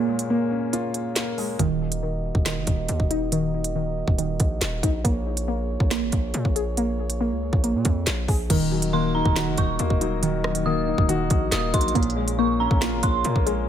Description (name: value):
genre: hip hop, drill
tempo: 139 BPM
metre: 4/4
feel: half-time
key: unclear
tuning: A4 = 442 Hz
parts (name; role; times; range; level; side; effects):
- dark grand piano; accompaniment; 0.0-1.6, 8.5-13.7 s; Bb2 to Gb4; -26 LUFS; left 5 dB; low-pass filter
- mellow French horn section; sustained chords; 0.0-13.7 s; Bb3 to Eb5; -32 LUFS; right 3 dB; none
- warbly dusty pluck; arpeggios; 0.0-13.7 s; Eb3 to Ab4; -27 LUFS; right 1 dB; chorus, phaser, low-pass filter, ping-pong delay
- drill drum kit; drums; 0.2-13.6 s; crash cymbal, handclaps, hi-hat, kick drum, rim click, snare drum; -23 LUFS; equal; none
- distorted 808-style bass; bass; 1.6-13.7 s; Eb1 to Bb2; -28 LUFS; equal; distortion
- dark detuned synth bell; second line; 8.9-13.2 s; Bb5 to Eb6; -28 LUFS; right 4 dB; chorus, phaser, ping-pong delay
room: digital ambience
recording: none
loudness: -21 LUFS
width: side -10 dB against mid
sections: 0.0-8.5 A section; 8.5-13.7 B section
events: break 0.0-1.6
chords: 0.0 Bbm7; 1.6 Ebm; 5.0 Bbm7; 8.5 Ebm; 12.0 Bbm7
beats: 0.30 0.73 1.16 | 1.59 2.03 2.46 2.89 | 3.32 3.75 4.18 4.62 | 5.05 5.48 5.91 6.34 | 6.77 7.21 7.64 8.07 | 8.50 8.93 9.36 9.79 | 10.23 10.66 11.09 11.52 | 11.95 12.38 12.82 13.25 | 13.68